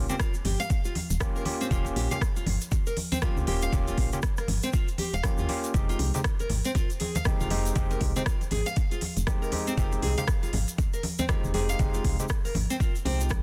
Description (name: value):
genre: afro house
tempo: 119 BPM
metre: 4/4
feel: swing 60% on 16ths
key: F minor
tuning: A4 = 440 Hz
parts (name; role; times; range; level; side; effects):
- overdriven tine electric piano; stabs; 0.0-13.4 s; Ab3 to G4; -37 LUFS; equal; sidechain pumping, tape echo
- woody FM bass; bass; 0.0-13.4 s; Eb1 to Eb2; -31 LUFS; equal; sidechain pumping
- nylon-string guitar; arpeggios; 0.1-13.3 s; C4 to F5; -36 LUFS; equal; sidechain pumping, tape echo
- deep house drum kit; drums; 0.1-13.4 s; hi-hat, rim click; -38 LUFS; equal; small room ambience
- congas; percussion; 0.1-13.4 s; none; -37 LUFS; equal; none
- tube shaker; percussion; 0.1-13.4 s; none; -43 LUFS; equal; none
- electronic kick drum; drums; 0.2-13.4 s; none; -30 LUFS; equal; small room ambience
room: small room ambience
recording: dense, heavily limited modern master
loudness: -28 LUFS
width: mono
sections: 0.0-13.4 A section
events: none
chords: 0.0 Eb7; 5.7 Fm7